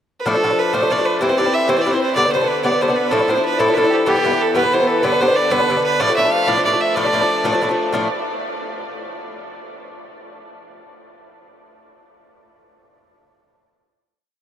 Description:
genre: celtic folk, Celtic slide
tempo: 125 BPM (dotted quarters)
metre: 12/8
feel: straight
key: D dorian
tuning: A4 = 440 Hz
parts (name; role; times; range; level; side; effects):
- clear fiddle; melody; 0.2-7.6 s; G4 to F5; -18 LUFS; right 1 dB; tape echo
- Irish bouzouki; accompaniment; 0.3-8.1 s; G2 to E4; -19 LUFS; left 2 dB; none
room: wet huge ambient reverb, RT60 9.4 s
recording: dreamy mix soaked in reverb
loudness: -15 LUFS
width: side -9 dB against mid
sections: 0.0-0.3 pickup bar; 0.3-7.9 A section; 7.9-9.9 final chord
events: none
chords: 0.3 Dm; 1.2 C; 2.2 G; 3.1 Dmadd9; 4.1 Em; 5.0 G; 6.0 Dm

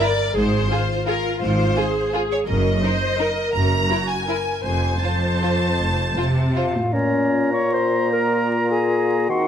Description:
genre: classical, orchestral ballroom waltz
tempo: 143-181 BPM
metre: 3/4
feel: rubato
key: Bb minor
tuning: A4 = 443 Hz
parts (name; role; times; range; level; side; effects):
- rich symphonic violin section; melody; 0.0-6.7 s; Bb4 to Bb5; -25 LUFS; left 1 dB; none
- warm symphonic violin section; second line; 0.0-6.6 s; Eb4 to C5; -27 LUFS; left 1 dB; none
- dark symphonic viola section; accompaniment; 0.0-6.7 s; F4 to C5; -25 LUFS; equal; none
- rich symphonic cello section; bass; 0.4-6.9 s; F2 to C3; -24 LUFS; equal; none
- rich symphonic double bass section; bass; 0.4-6.1 s; F1 to Ab1; -25 LUFS; right 1 dB; none
- hollow concert flute; second line; 6.6-9.5 s; Db5 to Db6; -26 LUFS; left 3 dB; none
- mellow clarinet; second line; 6.6-9.5 s; Db4 to Db5; -22 LUFS; left 2 dB; none
- clear oboe; second line; 6.9-9.5 s; Bb5 to C6; -26 LUFS; right 2 dB; none
- warm bassoon; accompaniment; 6.9-9.5 s; Bb2 to Eb3; -24 LUFS; right 2 dB; none
- clear French horn section; sustained chords; 6.9-9.5 s; Bb3 to F4; -24 LUFS; left 3 dB; none
room: light reverb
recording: close, detailed microphones, vinyl crackle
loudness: -18 LUFS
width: side -9 dB against mid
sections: 0.0-6.9 A section; 6.9-9.5 B section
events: none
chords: 0.4 Fm/Ab; 2.5 Ebm/Gb; 3.5 Gb; 4.6 F; 6.9 Bbm

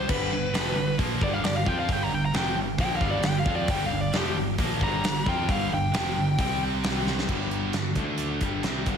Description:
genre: hard rock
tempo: 134 BPM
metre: 4/4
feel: straight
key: unclear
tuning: A4 = 439 Hz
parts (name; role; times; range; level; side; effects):
- biting lead guitar; melody; 0.0-6.6 s; G4 to Bb5; -29 LUFS; left 1 dB; overdrive, slapback echo, analog delay
- distorted electric guitar; riff; 0.0-9.0 s; F2 to F4; -33 LUFS; left 9 dB; distortion, slapback echo
- scooped high-gain guitar; riff; 0.0-9.0 s; F2 to F4; -31 LUFS; right 8 dB; distortion, slapback echo
- overdriven picked electric bass; bass; 0.0-9.0 s; F1 to F2; -32 LUFS; equal; none
- distorted electric guitar; riff; 0.1-9.0 s; F2 to F4; -34 LUFS; equal; distortion, slapback echo
- big rock drum kit; drums; 0.1-9.0 s; crash cymbal, hi-hat, kick drum, snare drum; -28 LUFS; equal; none
room: moderate recital hall reverb, RT60 1.2 s, small room reverb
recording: big arena sound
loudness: -23 LUFS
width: side -7 dB against mid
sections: 0.0-7.3 A section; 7.3-9.0 B section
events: lead electric guitar solo 0.0-7.3; drum fill 7.1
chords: 0.1 G5; 6.4 C5; 7.3 G5; 8.0 D5; 8.4 G5

